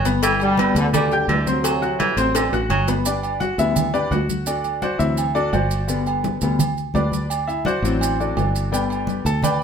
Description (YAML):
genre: latin, salsa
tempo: 170 BPM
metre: 4/4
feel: straight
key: G major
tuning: A4 = 439 Hz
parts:
  - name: clear baritone saxophone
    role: second line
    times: 0.0-2.9 s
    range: D3 to G3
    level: -24 LUFS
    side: right 3 dB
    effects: none
  - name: fingered electric bass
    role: bass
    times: 0.0-9.6 s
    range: G1 to D2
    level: -24 LUFS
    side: equal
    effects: none
  - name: agogo bells and timbales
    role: percussion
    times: 0.0-9.6 s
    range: none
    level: -27 LUFS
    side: right 8 dB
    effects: none
  - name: congas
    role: percussion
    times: 0.0-9.6 s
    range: none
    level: -27 LUFS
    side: right 1 dB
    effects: none
  - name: bright baby grand piano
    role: accompaniment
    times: 0.1-9.6 s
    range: D3 to G6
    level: -23 LUFS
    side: left 3 dB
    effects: none
  - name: cowbell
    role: percussion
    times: 0.1-3.1 s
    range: none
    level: -29 LUFS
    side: left 8 dB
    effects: none
  - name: maracas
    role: percussion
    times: 0.1-9.6 s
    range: none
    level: -32 LUFS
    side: right 4 dB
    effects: none
  - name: mellow trombone section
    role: melody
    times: 0.4-2.7 s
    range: G2 to G3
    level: -23 LUFS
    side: equal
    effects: none
room: moderate studio reverb, RT60 0.8 s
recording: band playing live in one room, faint mains hum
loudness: -18 LUFS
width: side -7 dB against mid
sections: 0.0-3.1 A section; 3.1-9.6 B section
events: drum fill 2.3-3.1; grand piano solo 3.1-9.6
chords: 0.2 G; 1.6 D7; 3.1 G; 4.5 D7; 5.9 G; 7.3 D7; 8.7 G